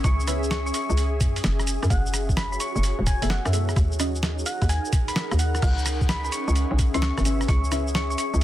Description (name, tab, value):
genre	UK garage, two-step garage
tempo	129 BPM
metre	4/4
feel	swing 67% on 16ths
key	C# minor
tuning	A4 = 438 Hz
part	thumb-piano-like synth pluck	melody	0.0-8.4 s	E5 to C#6	-32 LUFS	equal	chorus, tape echo
part	warm analog pad	sustained chords	0.0-8.4 s	G#4	-39 LUFS	equal	chorus, sidechain pumping
part	hollow knocking FM bass	bass	0.0-8.4 s	E1 to F#2	-24 LUFS	equal	tube saturation
part	boom bap sampler-style drum kit	drums	0.0-8.4 s	crash cymbal, hi-hat, rim click, shaker, snare drum	-29 LUFS	right 1 dB	none
part	electronic kick drum	drums	0.0-7.6 s	none	-23 LUFS	equal	none
part	ethereal airy pad	texture	0.0-8.4 s	C#4 to F#5	-32 LUFS	left 1 dB	ensemble chorus, built-in reverb, sidechain pumping
part	deep mellow chord stab	stabs	0.3-0.4, 3.2-4.1, 6.9-7.8 s	B3 to E5	-31 LUFS	left 2 dB	chorus, phaser, tape echo
room	little or no reverb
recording	dense, heavily limited modern master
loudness	-21 LUFS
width	side -13 dB against mid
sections	0.0-8.4 A section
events	none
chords	0.0 C#m7; 1.7 F#m11; 3.8 D#m7; 5.6 C#m7